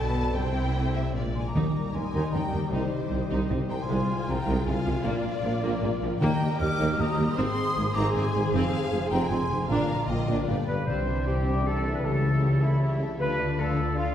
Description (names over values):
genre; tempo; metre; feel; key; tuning
cinematic; 155 BPM; 3/4; straight; Eb major, C major from 10.9 s; A4 = 438 Hz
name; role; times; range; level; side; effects
dark symphonic violin section; melody; 0.0-14.1 s; Bb4 to A5; -39 LUFS; left 3 dB; none
warm symphonic violin section; second line; 0.0-14.1 s; D4 to D6; -37 LUFS; left 2 dB; none
warm symphonic viola section; accompaniment; 0.0-14.1 s; F3 to A4; -32 LUFS; right 1 dB; none
concert harp; arpeggios; 0.0-14.1 s; F2 to F6; -32 LUFS; left 4 dB; none
dark symphonic cello section; bass; 0.0-14.1 s; Eb2 to Eb3; -32 LUFS; right 1 dB; none
rich symphonic double bass section; bass; 0.0-14.1 s; F1 to Eb2; -31 LUFS; right 1 dB; none
mellow hollow concert flute; second line; 1.3-10.9 s; Eb5 to F6; -34 LUFS; equal; none
warm tuba; bass; 1.6-10.8 s; F1 to Eb2; -32 LUFS; right 2 dB; none
timpani; percussion; 1.6-2.1, 6.2-6.8, 9.7-11.4 s; Bb2 to Eb3; -32 LUFS; left 1 dB; none
bright clarinet; second line; 10.7-14.1 s; E4 to C5; -36 LUFS; left 2 dB; none
mellow trumpet section; stabs; 10.7-14.1 s; E4 to C5; -32 LUFS; equal; none
dark French horn section; sustained chords; 10.9-14.1 s; D3 to G4; -34 LUFS; left 1 dB; none
room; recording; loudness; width
wet scoring stage reverb, RT60 1.8 s; heard from further back in the room; -24 LUFS; side -10 dB against mid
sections
0.0-1.6 A section; 1.6-10.9 B section; 10.9-14.1 A section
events
none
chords
0.4 C; 1.2 Bb7; 1.6 Eb; 2.7 Cm; 3.9 Fm/C; 5.1 Bb; 6.2 Eb; 7.4 Ab; 8.5 Fm; 9.7 Bb; 10.5 G7; 10.9 Cadd9; 12.0 A7/C#; 13.2 Dm